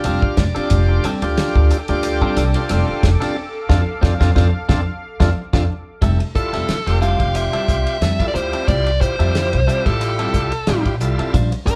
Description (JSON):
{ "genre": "electric jazz fusion", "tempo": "90 BPM", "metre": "4/4", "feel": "swing 54% on 16ths", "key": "F major", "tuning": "A4 = 441 Hz", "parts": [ { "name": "bright tonewheel organ", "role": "accompaniment", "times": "0.0-11.8 s", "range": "G3 to F5", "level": "-26 LUFS", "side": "equal", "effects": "slow rotary speaker, overdrive" }, { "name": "clean electric guitar", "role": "stabs", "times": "0.0-11.7 s", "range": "G3 to C5", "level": "-29 LUFS", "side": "equal", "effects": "none" }, { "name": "upright bass", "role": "bass", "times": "0.0-11.7 s", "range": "F1 to F2", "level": "-21 LUFS", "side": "equal", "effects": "none" }, { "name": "damped 70s drum kit", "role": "drums", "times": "0.0-11.8 s", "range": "hi-hat, kick drum, ride cymbal, snare drum", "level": "-23 LUFS", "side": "equal", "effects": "none" }, { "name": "lush unison pad", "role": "sustained chords", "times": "0.7-6.0 s", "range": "A4 to D6", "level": "-32 LUFS", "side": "equal", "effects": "chorus" }, { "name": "dark smooth lead guitar", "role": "melody", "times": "6.4-11.8 s", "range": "A4 to F5", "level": "-24 LUFS", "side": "equal", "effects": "overdrive" } ], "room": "moderate studio reverb, RT60 0.6 s", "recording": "band playing live in one room", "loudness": "-18 LUFS", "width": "mono", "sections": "0.0-6.0 A section; 6.0-11.8 B section", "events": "tonewheel organ fill 0.0-0.7, 5.0-6.0; band accent 3.4-6.0; drum fill 5.7-6.0", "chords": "0.0 F69; 6.0 Fmaj9", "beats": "0.05 | 0.71 1.38 2.04 2.70 | 3.37 4.03 4.69 5.36 | 6.02 6.69 7.35 8.02 | 8.68 9.35 10.01 10.67 | 11.34" }